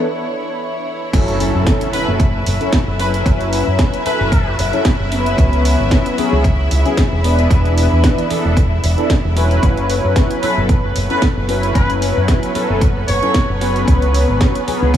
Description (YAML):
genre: nu-disco, nu disco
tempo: 113 BPM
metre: 4/4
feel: swing 54% on 16ths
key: F# minor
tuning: A4 = 440 Hz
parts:
  - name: mellow synth brass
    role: accompaniment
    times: 0.0-14.9 s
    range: E3 to B4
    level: -19 LUFS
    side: left 1 dB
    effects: chorus, vintage 12-bit sampler grit, analog delay
  - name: warm studio string section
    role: sustained chords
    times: 0.0-15.0 s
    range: B3 to E5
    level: -24 LUFS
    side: left 1 dB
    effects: sidechain pumping
  - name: fingered electric bass with an envelope filter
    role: bass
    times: 1.1-15.0 s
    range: E1 to F#2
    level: -17 LUFS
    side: equal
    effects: none
  - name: electronic kick drum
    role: drums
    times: 1.1-15.0 s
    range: none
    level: -15 LUFS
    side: equal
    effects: none
  - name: house drum kit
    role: drums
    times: 1.1-15.0 s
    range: crash cymbal, hi-hat, snare drum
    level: -24 LUFS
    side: right 1 dB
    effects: low-pass filter on hats, low-pass filter on cymbals, low-pass filter on snare, low-pass filter on room
  - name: impact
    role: sound effects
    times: 1.1-3.3 s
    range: none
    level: -28 LUFS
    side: equal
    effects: none
  - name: brilliant trumpet section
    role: melody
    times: 1.9-4.6, 10.4-13.5 s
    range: B4 to C#5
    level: -24 LUFS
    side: right 1 dB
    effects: tape echo
room: moderate huge ambient reverb, RT60 8.1 s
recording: dreamy mix soaked in reverb, small room ambience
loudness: -13 LUFS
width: side -10 dB against mid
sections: 0.0-1.1 A section; 1.1-15.0 B section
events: break 0.1-1.1; drop 1.1-15.0; impact 1.1-3.3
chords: 0.0 N.C.; 1.1 F#m7; 5.4 C#7sus4; 7.2 E7sus4; 9.6 F#m7; 13.9 C#7sus4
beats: 0.07 0.60 | 1.13 1.67 2.20 2.73 | 3.26 3.79 4.32 4.85 | 5.38 5.91 6.44 6.97 | 7.50 8.04 8.57 9.10 | 9.63 10.16 10.69 11.22 | 11.75 12.28 12.81 13.35 | 13.88 14.41 14.94